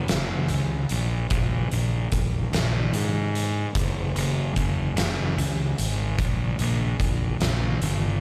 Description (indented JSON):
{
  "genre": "quiet-loud alternative rock",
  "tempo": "49 BPM (dotted quarters)",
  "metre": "6/8",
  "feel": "straight",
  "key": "unclear",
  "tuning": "A4 = 440 Hz",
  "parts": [
    { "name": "fuzz fingered electric bass", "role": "bass", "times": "0.0-8.2 s", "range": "Gb1 to Ab2", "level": "-27 LUFS", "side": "equal", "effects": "overdrive" },
    { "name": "oversized low-tuned drum kit", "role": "drums", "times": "0.1-8.0 s", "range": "hi-hat, kick drum, snare drum", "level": "-29 LUFS", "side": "equal", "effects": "none" }
  ],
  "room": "little or no reverb",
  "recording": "live gig heard through the venue's PA, recital hall reverb",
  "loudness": "-25 LUFS",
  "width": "mono",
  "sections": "0.0-8.2 A section",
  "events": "none",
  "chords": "none"
}